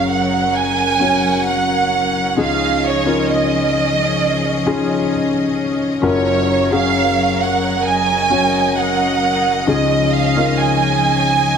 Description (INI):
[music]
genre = pop ballad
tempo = 66 BPM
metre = 4/4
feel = straight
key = Db major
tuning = A4 = 440 Hz
[part]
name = warm studio violin section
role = melody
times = 0.0-11.6 s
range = Db5 to Ab5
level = -17 LUFS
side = right 5 dB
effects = none
[part]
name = warm concert grand piano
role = accompaniment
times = 0.0-11.6 s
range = Gb1 to Ab5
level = -18 LUFS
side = left 4 dB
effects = none
[part]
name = rich studio string section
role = sustained chords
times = 0.0-11.6 s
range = F3 to Gb5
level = -22 LUFS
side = right 1 dB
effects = none
[sound]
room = moderate lush hall reverb, RT60 2.2 s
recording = none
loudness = -14 LUFS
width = side -7 dB against mid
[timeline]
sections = 0.0-11.6 A section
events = grand piano fill 4.2-6.0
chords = 0.0 Gbmaj7; 2.4 Dbadd9; 6.0 Gbmaj7; 9.7 Dbadd9